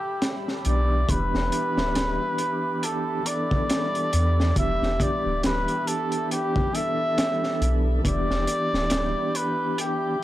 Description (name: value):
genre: trip hop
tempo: 69 BPM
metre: 4/4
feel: swing 57% on 16ths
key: unclear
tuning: A4 = 440 Hz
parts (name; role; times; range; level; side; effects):
- trumpet with cup mute; melody; 0.0-10.2 s; G4 to E5; -26 LUFS; equal; vintage 12-bit sampler grit, tape echo
- warbly tape-like pad; sustained chords; 0.0-10.2 s; G4 to G6; -37 LUFS; right 2 dB; chorus, built-in reverb, phaser
- crunchy breakbeat drum kit; drums; 0.2-10.0 s; hi-hat, kick drum, snare drum; -27 LUFS; equal; none
- mellow tonewheel organ; accompaniment; 0.6-10.2 s; E3 to A4; -29 LUFS; equal; slow rotary speaker, tremolo
- soft dub sub bass; bass; 0.7-9.1 s; D1 to E2; -24 LUFS; equal; none
room: light reverb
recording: dry, gritty hardware recording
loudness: -22 LUFS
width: side -14 dB against mid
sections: 0.0-10.2 A section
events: none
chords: 0.0 Gadd9